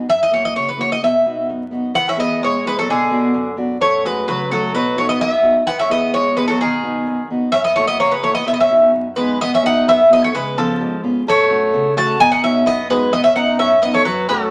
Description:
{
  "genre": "greek folk, Greek bouzouki band",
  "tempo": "129 BPM",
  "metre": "2/4",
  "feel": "straight",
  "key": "unclear",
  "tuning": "A4 = 440 Hz",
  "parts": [
    { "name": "picked acoustic archtop guitar", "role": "accompaniment", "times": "0.0-14.5 s", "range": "F#2 to G#4", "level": "-23 LUFS", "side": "equal", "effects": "none" },
    { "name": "Greek bouzouki", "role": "melody", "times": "0.1-14.5 s", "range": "G#4 to A5", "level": "-18 LUFS", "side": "equal", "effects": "none" },
    { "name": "Greek bouzouki", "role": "second line", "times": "2.0-14.5 s", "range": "D3 to F#4", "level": "-25 LUFS", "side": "equal", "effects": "none" }
  ],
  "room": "wet studio reverb, RT60 0.9 s",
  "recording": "vinyl crackle",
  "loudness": "-16 LUFS",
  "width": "mono",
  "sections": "0.0-2.0 A section; 2.0-9.4 A section; 9.4-14.5 B section",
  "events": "none",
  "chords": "0.1 F#7; 1.0 B; 2.0 E; 2.9 Bm; 3.8 F#m; 4.7 B; 5.7 E; 6.6 B; 7.5 F#7; 8.5 B; 10.3 C#7; 11.3 F#m; 12.2 B; 13.1 Badd9"
}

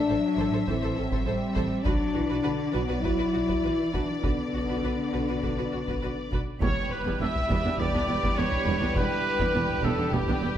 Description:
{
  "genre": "cinematic, epic orchestral film score",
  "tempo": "102 BPM",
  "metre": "4/4",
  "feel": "straight",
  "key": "unclear",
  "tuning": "A4 = 440 Hz",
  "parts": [
    { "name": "warm symphonic violin section", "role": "melody", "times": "0.0-10.6 s", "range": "G4 to E5", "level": "-36 LUFS", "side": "left 3 dB", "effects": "none" },
    { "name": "mellow French horn section", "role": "sustained chords", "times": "0.0-10.6 s", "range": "B3 to E4", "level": "-30 LUFS", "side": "left 3 dB", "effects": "none" },
    { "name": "warm symphonic cello section", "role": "bass", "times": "0.0-10.5 s", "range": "E2 to G3", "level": "-33 LUFS", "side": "right 1 dB", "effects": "none" },
    { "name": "warm symphonic violin section", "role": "second line", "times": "0.1-10.6 s", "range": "F#4 to C5", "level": "-36 LUFS", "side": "left 3 dB", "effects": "none" },
    { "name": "rich studio viola section", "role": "accompaniment", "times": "0.1-10.5 s", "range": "G3 to A4", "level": "-35 LUFS", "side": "right 1 dB", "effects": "none" },
    { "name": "rich studio double bass section", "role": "bass", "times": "0.1-10.5 s", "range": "E1 to B1", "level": "-34 LUFS", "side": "right 2 dB", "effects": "none" },
    { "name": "taiko ensemble", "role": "drums", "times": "0.7-10.6 s", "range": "none", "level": "-32 LUFS", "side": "equal", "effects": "none" },
    { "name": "warm trombone section", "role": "sustained chords", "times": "6.6-10.6 s", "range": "D3 to G3", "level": "-36 LUFS", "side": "right 4 dB", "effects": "none" },
    { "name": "warm trumpet", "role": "stabs", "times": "6.6-10.6 s", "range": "G4 to E5", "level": "-30 LUFS", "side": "right 2 dB", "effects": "none" },
    { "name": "mellow tuba", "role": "bass", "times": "6.6-10.5 s", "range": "E1", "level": "-36 LUFS", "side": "right 4 dB", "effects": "none" },
    { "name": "impact", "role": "sound effects", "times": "6.6-9.0 s", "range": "none", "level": "-42 LUFS", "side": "equal", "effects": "none" }
  ],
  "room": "moderate recital hall reverb, RT60 1.6 s",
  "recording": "none",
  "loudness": "-24 LUFS",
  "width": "side -10 dB against mid",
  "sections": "0.0-6.6 A section; 6.6-10.6 B section",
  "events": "impact 6.6-9.0",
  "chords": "0.0 Am; 1.9 Bm; 6.6 Em7"
}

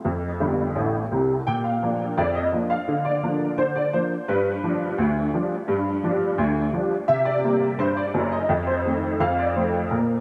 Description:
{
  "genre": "ragtime piano",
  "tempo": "85 BPM",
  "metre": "2/4",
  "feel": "straight",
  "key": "Bb major",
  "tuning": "A4 = 440 Hz",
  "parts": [
    { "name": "warm upright piano", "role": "solo", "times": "0.0-10.2 s", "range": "Gb1 to G5", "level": "-23 LUFS", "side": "equal", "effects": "ensemble chorus, tape echo" }
  ],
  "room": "wet plate reverb, RT60 2.9 s",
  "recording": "dreamy mix soaked in reverb",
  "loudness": "-23 LUFS",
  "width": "mono",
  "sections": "0.0-10.2 A section",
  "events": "upright piano fill 0.4-1.5",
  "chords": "0.0 F; 1.5 Bb; 2.9 Bb/D; 4.3 G7; 7.1 C5; 8.5 F7; 9.2 F"
}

